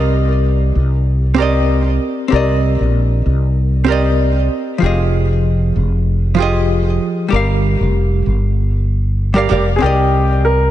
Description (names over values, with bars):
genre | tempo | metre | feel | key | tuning
sunset chillout | 96 BPM | 4/4 | straight | C minor | A4 = 440 Hz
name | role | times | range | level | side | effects
hollow-body jazz guitar | accompaniment | 0.0-10.7 s | F3 to F5 | -17 LUFS | moving between left 3 dB and right 5 dB | auto-pan, digital delay
mellow fretless electric bass | bass | 0.0-10.7 s | F1 to C2 | -14 LUFS | equal | wide subtle chorus
warm grand piano | melody | 9.8-10.7 s | G4 to Bb4 | -15 LUFS | left 2 dB | tape echo
room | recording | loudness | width
light reverb, small room ambience | nothing above 10.3 kHz | -13 LUFS | side -12 dB against mid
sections
0.0-10.7 A section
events
none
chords
0.0 Cm7; 4.8 Fm9; 7.3 Gm7; 9.8 Cm7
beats
0.45 1.07 1.70 | 2.32 2.95 3.57 4.20 | 4.82 5.45 6.07 6.70 | 7.32 7.95 8.57 9.20 | 9.82 10.45